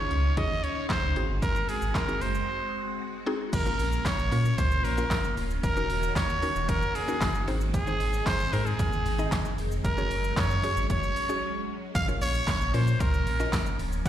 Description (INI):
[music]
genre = dance-pop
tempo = 114 BPM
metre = 4/4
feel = straight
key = Bb minor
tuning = A4 = 443 Hz
[part]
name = growling trumpet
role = melody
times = 0.0-14.1 s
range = Ab4 to Gb5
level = -30 LUFS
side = right 1 dB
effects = digital delay, slapback echo
[part]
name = mallet-like synth pluck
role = accompaniment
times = 0.0-13.9 s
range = Bb3 to Eb5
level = -35 LUFS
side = left 2 dB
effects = chorus, sidechain pumping, slapback echo
[part]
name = phased string machine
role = sustained chords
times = 0.0-14.1 s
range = Db3 to F5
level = -36 LUFS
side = left 1 dB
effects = ensemble chorus, phaser, sidechain pumping
[part]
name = sub bass with octave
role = bass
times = 0.1-14.1 s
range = D1 to Bb2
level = -28 LUFS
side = equal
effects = sidechain pumping
[part]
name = deep house drum kit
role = drums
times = 0.1-14.1 s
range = crash cymbal, handclaps, hi-hat, kick drum, shaker, snare drum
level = -30 LUFS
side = equal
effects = overdrive
[part]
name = tambourine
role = percussion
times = 3.5-13.9 s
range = none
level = -51 LUFS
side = left 6 dB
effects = none
[sound]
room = little or no reverb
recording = live gig heard through the venue's PA, recital hall reverb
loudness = -25 LUFS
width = side -11 dB against mid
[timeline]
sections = 0.0-3.5 A section; 3.5-14.1 B section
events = break 2.5-3.5, 11.4-12.0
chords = 0.0 Dbadd9; 1.2 Ab7; 3.5 Bbm; 5.6 Ebm7; 7.5 Ab; 9.8 Gbsus2; 12.0 Bbm